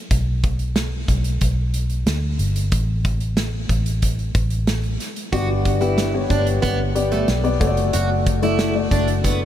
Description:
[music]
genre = piano-driven pop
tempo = 92 BPM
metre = 4/4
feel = straight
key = unclear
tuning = A4 = 440 Hz
[part]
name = vintage muted fingered electric bass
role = bass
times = 0.1-9.4 s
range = F#1 to D2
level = -21 LUFS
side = equal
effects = none
[part]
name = loose indie drum kit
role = drums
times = 0.1-9.4 s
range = hi-hat, kick drum, snare drum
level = -23 LUFS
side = equal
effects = none
[part]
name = dark baby grand piano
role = accompaniment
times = 5.3-9.4 s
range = G2 to D5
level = -21 LUFS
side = left 4 dB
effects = wide subtle chorus
[part]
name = picked plugged-in steel-string acoustic guitar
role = riff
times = 5.3-9.4 s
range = A3 to F#4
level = -24 LUFS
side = right 4 dB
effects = lush chorus
[sound]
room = light reverb, studio reverb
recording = none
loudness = -18 LUFS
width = side -11 dB against mid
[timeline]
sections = 0.0-9.4 A section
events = none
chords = 0.1 N.C.; 5.3 G; 7.6 D/F#

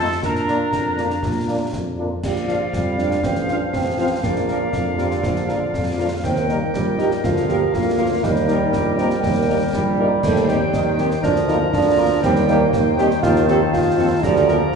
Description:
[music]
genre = military-style march for wind band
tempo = 120 BPM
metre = 2/4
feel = straight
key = Bb major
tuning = A4 = 440 Hz
[part]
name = mellow trumpet section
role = melody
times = 0.0-14.6 s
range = G4 to F5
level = -32 LUFS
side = equal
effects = none
[part]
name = mellow woodwind section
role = second line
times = 0.0-14.8 s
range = D4 to Bb5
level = -28 LUFS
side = left 2 dB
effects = none
[part]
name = wooden piccolo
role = second line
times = 0.0-1.7 s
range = A5 to Bb5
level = -26 LUFS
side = left 2 dB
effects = none
[part]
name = mellow French horn section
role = accompaniment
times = 0.0-14.6 s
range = F3 to F4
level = -27 LUFS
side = left 4 dB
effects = none
[part]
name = clear trombone section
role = sustained chords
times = 0.0-14.7 s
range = D3 to D4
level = -25 LUFS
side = right 2 dB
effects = none
[part]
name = warm tuba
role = bass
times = 0.0-14.7 s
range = A1 to Bb2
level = -22 LUFS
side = right 1 dB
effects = none
[part]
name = concert snare drum, concert bass drum and clash cymbals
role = drums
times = 0.2-14.6 s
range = none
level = -26 LUFS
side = left 1 dB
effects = none
[part]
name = warm euphonium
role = second line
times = 2.2-14.8 s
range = F3 to G4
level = -21 LUFS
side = right 3 dB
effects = none
[sound]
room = wet recital hall reverb, RT60 1.5 s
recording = recorded in a church or concert hall, nothing above 10.5 kHz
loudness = -17 LUFS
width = side -5 dB against mid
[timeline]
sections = 0.0-2.2 A section; 2.2-14.8 A section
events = none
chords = 0.2 Bb; 3.2 F/A; 4.2 Bb; 6.2 Eb; 7.2 Bb/D; 8.2 Eb; 10.2 Cm/Eb; 11.2 Bb/D; 12.2 Cm/Eb; 13.2 F7/Eb; 14.2 Bb/D

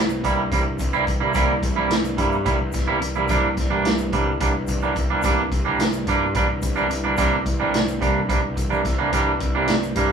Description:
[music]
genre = psychedelic rock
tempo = 216 BPM (eighths)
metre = 7/8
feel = straight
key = unclear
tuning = A4 = 440 Hz
[part]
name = fuzz picked electric bass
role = bass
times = 0.0-10.1 s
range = C2 to G2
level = -26 LUFS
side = left 1 dB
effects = overdrive
[part]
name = pedal harmonium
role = drone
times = 0.0-10.1 s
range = C2 to G2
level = -32 LUFS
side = left 3 dB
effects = none
[part]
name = egg shaker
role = percussion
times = 0.1-10.0 s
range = none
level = -43 LUFS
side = left 7 dB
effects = none
[part]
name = twangy electric guitar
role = riff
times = 0.2-10.1 s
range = C3 to E4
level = -21 LUFS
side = right 4 dB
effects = none
[part]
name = vintage drum kit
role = drums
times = 0.2-10.1 s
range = hi-hat, kick drum, snare drum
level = -24 LUFS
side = equal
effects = none
[sound]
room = moderate studio reverb, RT60 0.5 s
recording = band playing live in one room, small room ambience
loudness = -19 LUFS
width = side -7 dB against mid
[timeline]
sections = 0.0-10.1 A section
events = none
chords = 0.0 C7; 3.3 Gm/C

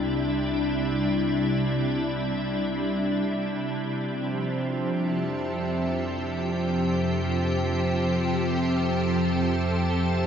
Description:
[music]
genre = ambient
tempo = free time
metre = none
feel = none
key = unclear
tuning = A4 = 440 Hz
[part]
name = soft additive organ-like pad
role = sustained chords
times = 0.0-10.3 s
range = C3 to A4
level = -24 LUFS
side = equal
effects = ensemble chorus, built-in reverb
[part]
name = deep rumbling drone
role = bass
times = 0.0-10.3 s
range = C2 to F2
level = -34 LUFS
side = equal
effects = built-in reverb
[part]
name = pedal harmonium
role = drone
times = 4.1-10.3 s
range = C3 to C4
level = -30 LUFS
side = equal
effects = none
[sound]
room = wet huge ambient reverb, RT60 7.9 s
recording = dreamy mix soaked in reverb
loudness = -24 LUFS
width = side -8 dB against mid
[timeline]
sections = 0.0-10.3 A section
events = fade-in on synth drone 0.0-10.3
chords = 0.0 C; 4.2 Fmaj9

